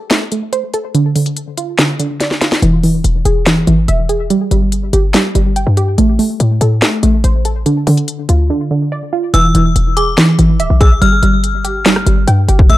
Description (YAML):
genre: hip hop, trap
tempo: 143 BPM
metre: 4/4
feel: half-time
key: unclear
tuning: A4 = 438 Hz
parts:
  - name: warbly dusty pluck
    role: arpeggios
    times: 0.0-12.8 s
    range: D3 to G5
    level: -15 LUFS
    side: right 2 dB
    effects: chorus, ping-pong delay
  - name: trap drum kit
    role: drums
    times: 0.1-12.8 s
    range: handclaps, hi-hat, kick drum, rim click, snare drum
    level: -14 LUFS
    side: equal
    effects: none
  - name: short 808-style bass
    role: bass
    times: 2.6-12.8 s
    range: D1 to D3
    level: -13 LUFS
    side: equal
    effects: none
  - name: metallic FM bell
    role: second line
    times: 9.3-12.8 s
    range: D6 to F6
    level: -17 LUFS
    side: left 2 dB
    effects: chorus, ping-pong delay
room: digital ambience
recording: dark, warm production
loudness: -11 LUFS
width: side -15 dB against mid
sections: 0.0-9.3 A section; 9.3-12.8 B section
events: break 0.0-2.6, 8.5-9.3; drum fill 2.2-2.6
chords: 0.0 Am; 0.9 Dm; 2.6 E; 4.3 N.C.; 6.0 Am; 7.7 Dm; 9.3 E; 11.0 Fsus2/G